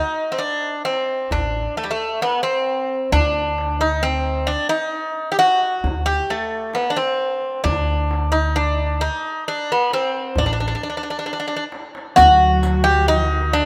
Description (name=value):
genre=Turkish makam ensemble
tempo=132 BPM (eighths)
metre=10/8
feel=straight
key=D makam hicaz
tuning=A4 = 443 Hz
part: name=Greek bouzouki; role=melody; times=0.0-13.7 s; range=G3 to G4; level=-21 LUFS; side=equal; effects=none
part: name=darbuka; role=percussion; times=0.9-13.2 s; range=none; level=-30 LUFS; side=equal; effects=none
part: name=upright bass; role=bass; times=1.3-13.6 s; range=A1 to D2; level=-24 LUFS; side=equal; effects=none
part: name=mellow clarinet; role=second line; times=12.2-13.7 s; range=D4 to F#4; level=-30 LUFS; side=equal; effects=none
part: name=rich symphonic cello section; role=second line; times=12.2-13.7 s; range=D3 to F#3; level=-28 LUFS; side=equal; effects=none
part: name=riq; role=percussion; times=12.2-13.2 s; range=none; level=-29 LUFS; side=equal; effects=none
room=moderate plate reverb, RT60 2.9 s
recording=rough home demo mix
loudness=-20 LUFS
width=mono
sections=0.0-12.2 A section; 12.2-13.7 B section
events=drum fill 11.3-12.2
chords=none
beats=0.40 0.85 1.30 1.76 2.21 2.66 | 3.12 3.57 4.02 4.47 4.93 5.38 5.83 6.29 6.74 7.19 | 7.65 8.10 8.55 9.01 9.46 9.91 10.37 10.82 11.27 11.72 | 12.18 12.63 13.08 13.54